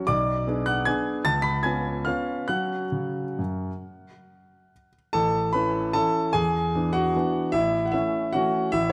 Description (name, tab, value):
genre	classical, piano waltz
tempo	128-160 BPM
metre	3/4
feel	rubato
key	F# minor, A major from 5.1 s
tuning	A4 = 444 Hz
part	clear grand piano	solo	0.0-8.9 s	A1 to B6	-25 LUFS	equal	none
room	moderate concert hall reverb, RT60 2.0 s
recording	close, detailed microphones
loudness	-25 LUFS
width	mono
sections	0.0-5.1 A section; 5.1-8.9 B section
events	none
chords	0.1 G#dim/B; 1.2 C#7; 2.5 F#5; 5.1 A; 6.3 E7; 7.5 A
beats	| 0.07 0.46 0.86 | 1.25 1.64 2.06 | 2.49 2.93 3.39 | 3.84 4.27 4.71 | 5.14 5.53 5.93 | 6.33 6.73 7.14 | 7.54 7.93 8.34 | 8.73